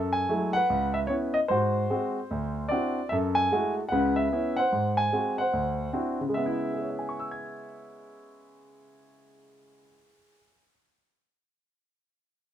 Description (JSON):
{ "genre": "solo jazz", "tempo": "149 BPM", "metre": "4/4", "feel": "swing 65% on 8ths", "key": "C# minor", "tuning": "A4 = 439 Hz", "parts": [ { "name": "warm grand piano", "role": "solo", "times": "0.0-10.9 s", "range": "C#2 to G#6", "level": "-25 LUFS", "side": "equal", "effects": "none" } ], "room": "light reverb", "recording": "minimal, uncompressed stereo recording", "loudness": "-25 LUFS", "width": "side -10 dB against mid", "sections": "0.0-6.3 A section; 6.3-9.6 B section", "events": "none", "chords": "0.0 F#m9; 0.7 C#m7; 1.5 G#7; 2.3 D9; 3.1 F#m9; 3.9 C#m7; 4.7 G#7; 5.5 D9; 6.3 C#m7" }